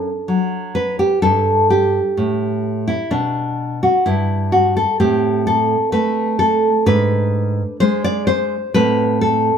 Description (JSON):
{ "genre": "classical, baroque-style dance for nylon-string guitar", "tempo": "64 BPM", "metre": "4/4", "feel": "rubato", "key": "G major", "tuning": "A4 = 439 Hz", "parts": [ { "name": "nylon-string guitar", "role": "solo", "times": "0.0-9.6 s", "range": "G2 to D5", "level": "-15 LUFS", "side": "equal", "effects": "none" } ], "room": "moderate studio reverb, RT60 0.8 s", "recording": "band playing live in one room", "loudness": "-15 LUFS", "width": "side -7 dB against mid", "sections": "0.0-9.6 A section", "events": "none", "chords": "0.0 D/F#; 1.2 G; 5.0 Am; 6.9 G#dim; 8.7 Am", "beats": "0.28 | 1.23 2.17 3.11 4.07 | 5.01 5.94 6.88 7.80 | 8.73" }